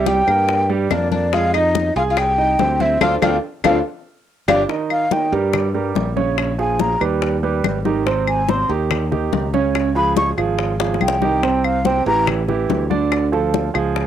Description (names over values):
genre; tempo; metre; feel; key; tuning
Afro-Cuban jazz; 142 BPM; 4/4; straight; unclear; A4 = 439 Hz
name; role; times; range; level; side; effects
breathy mellow jazz flute; melody; 0.0-12.3 s; D5 to Db6; -19 LUFS; left 1 dB; cassette tape
oud; second line; 0.0-4.6 s; C4 to G4; -25 LUFS; left 10 dB; cassette tape
warm grand piano; accompaniment; 0.0-14.1 s; C3 to Ab5; -20 LUFS; right 7 dB; cassette tape
modern bright fingered electric bass; bass; 0.0-14.1 s; G1 to G2; -22 LUFS; left 1 dB; none
bongos; percussion; 0.1-14.1 s; none; -26 LUFS; left 12 dB; none
congas; percussion; 0.1-14.1 s; none; -25 LUFS; left 12 dB; none
claves; percussion; 0.3-14.0 s; none; -23 LUFS; left 12 dB; none
room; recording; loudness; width
light reverb; home recording on cassette; -16 LUFS; side -10 dB against mid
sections
0.0-4.7 A section; 4.7-14.1 B section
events
band accent 3.0-4.7; drum fill 3.9-4.7, 10.8-11.4; flute solo 4.7-14.1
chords
0.0 C5; 1.3 Fm9; 3.0 Dm7; 3.9 G5; 4.7 Eb7; 6.4 Bbm7; 7.2 Ebaug; 8.1 Abmaj7; 9.7 Dbadd9; 11.4 C5; 12.3 A5; 13.1 Dm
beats
0.07 0.49 0.91 | 1.33 1.75 2.17 2.59 | 3.01 3.43 3.85 4.27 | 4.69 5.12 5.54 5.96 | 6.38 6.80 7.22 7.64 | 8.06 8.48 8.90 9.32 | 9.75 10.17 10.59 11.01 | 11.43 11.85 12.27 12.69 | 13.12 13.54 13.96